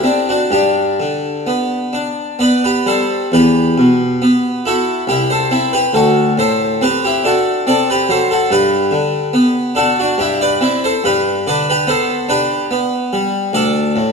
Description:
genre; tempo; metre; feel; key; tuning
classical, baroque-style suite movement for harpsichord; 63-72 BPM; 3/4; rubato; G major; A4 = 443 Hz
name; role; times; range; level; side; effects
harpsichord; solo; 0.0-14.1 s; C2 to D5; -12 LUFS; equal; none
room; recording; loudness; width
wet recital hall reverb, RT60 1.7 s; dark, warm production; -13 LUFS; side -5 dB against mid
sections
0.0-3.3 A section; 3.3-14.1 A section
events
none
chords
0.0 D7; 0.5 G; 3.3 Em; 5.1 C; 5.9 D7; 8.5 G; 10.2 C/G; 11.0 G; 13.5 D5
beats
| 0.51 1.46 2.38 | 3.31 4.21 5.07 | 5.93 6.80 7.66 | 8.49 9.33 10.17 | 11.03 11.87 12.70 | 13.54

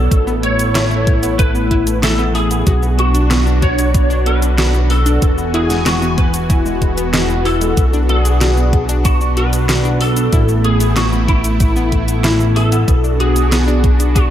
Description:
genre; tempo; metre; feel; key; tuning
synthwave; 94 BPM; 4/4; straight; B dorian; A4 = 440 Hz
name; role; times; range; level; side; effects
lightly driven lead guitar; melody; 0.0-14.2 s; E4 to C#5; -20 LUFS; equal; ensemble chorus, ping-pong delay
lush unison pad; sustained chords; 0.0-14.3 s; E3 to G#5; -20 LUFS; equal; chorus, phaser, sidechain pumping
analog pluck; arpeggios; 0.0-14.3 s; G#3 to F#4; -23 LUFS; left 2 dB; chorus, ping-pong delay
chorused synth bass; bass; 0.0-14.3 s; E1 to B1; -16 LUFS; equal; none
electronic kick drum; drums; 0.1-14.3 s; none; -15 LUFS; equal; overdrive
pop drum kit; drums; 0.1-14.3 s; cabasa, handclaps, hi-hat, snare drum; -21 LUFS; equal; overdrive
room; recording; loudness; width
moderate plate reverb, RT60 2.2 s; dreamy mix soaked in reverb; -12 LUFS; side -11 dB against mid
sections
0.0-14.3 A section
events
none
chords
0.1 Asus2; 2.7 Bm; 5.2 Eadd9; 7.8 Bm; 10.3 Asus2; 12.9 Bm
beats
| 0.12 0.75 1.39 2.03 | 2.67 3.31 3.94 4.58 | 5.22 5.86 6.50 7.14 | 7.78 8.41 9.05 9.69 | 10.33 10.97 11.61 12.24 | 12.88 13.52 14.16

